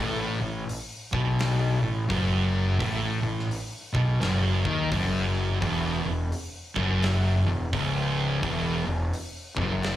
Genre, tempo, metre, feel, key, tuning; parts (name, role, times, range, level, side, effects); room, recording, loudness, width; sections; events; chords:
stoner and doom metal; 85 BPM; 4/4; swing 62% on 8ths; A4 = 441 Hz
thick fuzz guitar; riff; 0.0-10.0 s; C#2 to D#3; -26 LUFS; left 2 dB; distortion
thick fuzz guitar; riff; 0.0-10.0 s; C#2 to D#3; -31 LUFS; right 7 dB; distortion
fuzz fingered electric bass; bass; 0.0-10.0 s; C#1 to D#2; -30 LUFS; equal; overdrive
big rock drum kit; drums; 0.7-10.0 s; hi-hat, kick drum, snare drum; -35 LUFS; equal
light reverb; live gig heard through the venue's PA, club reverb; -24 LUFS; side -13 dB against mid
0.0-10.0 A section
0.0 F#madd11; 5.6 C#madd11